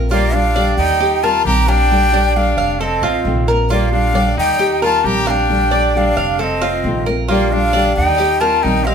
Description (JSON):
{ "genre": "latin", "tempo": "134 BPM", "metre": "4/4", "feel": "straight", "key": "Bb major", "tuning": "A4 = 440 Hz", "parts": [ { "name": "nylon-string guitar", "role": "accompaniment", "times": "0.0-8.9 s", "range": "C3 to G4", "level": "-21 LUFS", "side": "left 1 dB", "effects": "none" }, { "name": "Cuban tres", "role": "arpeggios", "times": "0.0-8.9 s", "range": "F4 to F5", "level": "-20 LUFS", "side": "right 3 dB", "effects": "none" }, { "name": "upright bass", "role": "bass", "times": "0.0-8.9 s", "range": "F1 to Eb2", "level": "-19 LUFS", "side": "equal", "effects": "none" }, { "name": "breathy jazz flute", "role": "melody", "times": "0.1-8.9 s", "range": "D5 to Bb5", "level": "-18 LUFS", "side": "left 1 dB", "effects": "none" }, { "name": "bright trumpet", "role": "second line", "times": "0.1-8.9 s", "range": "Bb3 to G4", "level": "-22 LUFS", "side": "left 2 dB", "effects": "none" } ], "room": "moderate studio reverb, RT60 0.7 s", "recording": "band playing live in one room", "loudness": "-13 LUFS", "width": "side -7 dB against mid", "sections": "0.0-8.9 A section", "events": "none", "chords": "0.1 Bb6; 1.0 Eb6; 1.9 Bb6; 2.8 F7; 3.7 Bb6; 4.6 Eb6; 5.5 Bb6; 6.4 F7; 7.3 Bb6; 8.2 Eb6", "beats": "| 0.10 0.55 1.00 1.45 | 1.90 2.35 2.80 3.25 | 3.70 4.15 4.60 5.05 | 5.50 5.95 6.40 6.84 | 7.29 7.74 8.19 8.64" }